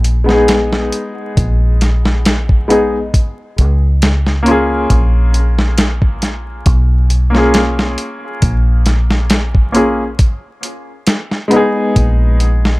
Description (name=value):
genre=trip hop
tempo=68 BPM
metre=4/4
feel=swing 54% on 16ths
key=Bb phrygian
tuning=A4 = 440 Hz
part: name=warm upright piano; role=accompaniment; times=0.0-12.8 s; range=Ab3 to Ab4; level=-16 LUFS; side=left 1 dB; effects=tremolo, low-pass filter, tape echo
part: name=deep dub fingered electric bass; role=bass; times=0.0-12.8 s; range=Bb1 to Db2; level=-13 LUFS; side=equal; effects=none
part: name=dusty soul sampler-style drum kit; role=drums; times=0.0-12.8 s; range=hi-hat, kick drum, snare drum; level=-14 LUFS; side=equal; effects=none
room=digital ambience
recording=vinyl crackle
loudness=-11 LUFS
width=side -22 dB against mid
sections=0.0-12.8 A section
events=none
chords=0.0 Bbm7; 12.0 Abm/Bb